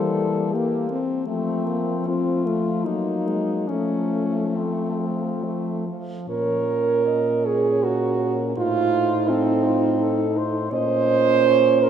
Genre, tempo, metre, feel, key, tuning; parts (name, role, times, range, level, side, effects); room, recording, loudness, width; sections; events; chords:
classical, lyrical piece for horn quartet; 68-85 BPM; 3/4; rubato; A4 = 440 Hz
clear French horn; melody; 0.0-11.9 s; C4 to Eb5; -28 LUFS; left 6 dB
clear French horn; second line; 0.0-11.9 s; F3 to C5; -23 LUFS; right 5 dB
mellow French horn; accompaniment; 0.0-11.9 s; G3 to Eb4; -26 LUFS; left 2 dB
dark French horn; bass; 0.0-11.9 s; A2 to Gb3; -27 LUFS; equal
wet church reverb, RT60 3.5 s; dark, warm production; -20 LUFS; side -8 dB against mid
0.0-6.3 A section; 6.3-11.9 B section
0.0 C7/E; 1.3 F; 2.9 Ebm/Gb; 3.7 F; 6.3 Bbm; 8.6 F7/A; 10.7 Bbm